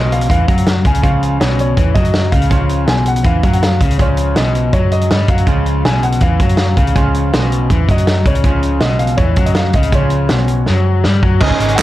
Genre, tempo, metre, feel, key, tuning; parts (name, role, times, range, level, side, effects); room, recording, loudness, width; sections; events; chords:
indie rock; 162 BPM; 4/4; straight; Db major; A4 = 442 Hz
warm upright piano; melody; 0.0-11.8 s; Db5 to Ab5; -21 LUFS; equal; tape echo
clean electric guitar; riff; 0.0-11.8 s; Db3 to Ab4; -23 LUFS; right 8 dB; analog chorus
crunchy overdriven guitar; riff; 0.0-11.8 s; Cb3 to Db4; -21 LUFS; left 8 dB
hollow-body short-scale picked electric bass; bass; 0.0-11.8 s; Ab1 to G2; -15 LUFS; equal
loose indie drum kit; drums; 0.1-11.8 s; crash cymbal, hi-hat, kick drum, snare drum; -16 LUFS; equal
group handclap; percussion; 11.8 s; -12 LUFS; right 4 dB
small room ambience; dark, warm production; -11 LUFS; side -15 dB against mid
0.0-11.4 A section
drum fill 10.7-11.4
0.0 Db